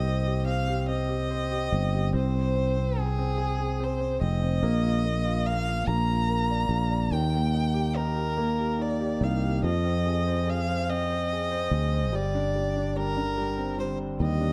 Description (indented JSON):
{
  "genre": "pop",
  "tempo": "48 BPM (dotted quarters)",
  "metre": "6/8",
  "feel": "straight",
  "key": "unclear",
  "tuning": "A4 = 439 Hz",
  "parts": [
    { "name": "rich violin", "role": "melody", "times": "0.0-14.5 s", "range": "Ab4 to Bb5", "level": "-33 LUFS", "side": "equal", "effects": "slapback echo" },
    { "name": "warm concert grand piano", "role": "accompaniment", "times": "0.0-14.5 s", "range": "D3 to F5", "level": "-33 LUFS", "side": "equal", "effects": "none" },
    { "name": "sustaining fretless electric bass", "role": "bass", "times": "0.0-14.5 s", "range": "F1 to F2", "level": "-29 LUFS", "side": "equal", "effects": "none" }
  ],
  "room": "light reverb, studio ambience",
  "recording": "dark, warm production",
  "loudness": "-27 LUFS",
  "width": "mono",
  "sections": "0.0-14.5 A section",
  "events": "none",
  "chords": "0.0 Cm; 2.1 Fm/C; 4.6 Bbsus4; 5.9 Bb; 7.1 Eb; 9.6 Fm; 12.1 Cmadd9/G",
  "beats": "0.89 | 2.14 3.39 | 4.63 5.87 | 7.12 8.37 | 9.63 10.88 | 12.13 13.37"
}